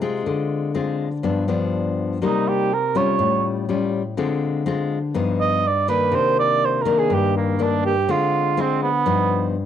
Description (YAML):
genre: bossa nova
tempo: 123 BPM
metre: 4/4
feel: straight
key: C minor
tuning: A4 = 440 Hz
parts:
  - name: nylon-string guitar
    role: accompaniment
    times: 0.0-9.7 s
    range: G2 to F4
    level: -21 LUFS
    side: left 4 dB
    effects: cassette tape, plate reverb
  - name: dark cor anglais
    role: melody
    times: 2.3-9.5 s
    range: Bb3 to Eb5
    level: -20 LUFS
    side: right 6 dB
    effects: cassette tape, plate reverb
room: wet booth ambience, RT60 0.3 s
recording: home recording on cassette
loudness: -18 LUFS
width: side -9 dB against mid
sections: 0.0-9.7 A section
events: cor anglais solo 0.0-9.7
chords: 0.3 Dm7b5; 1.2 G7; 2.2 Cm7; 3.2 A7b13; 4.2 Dm7b5; 5.1 G7b13; 6.1 Cm9; 8.1 Dm7b5; 9.1 G7b13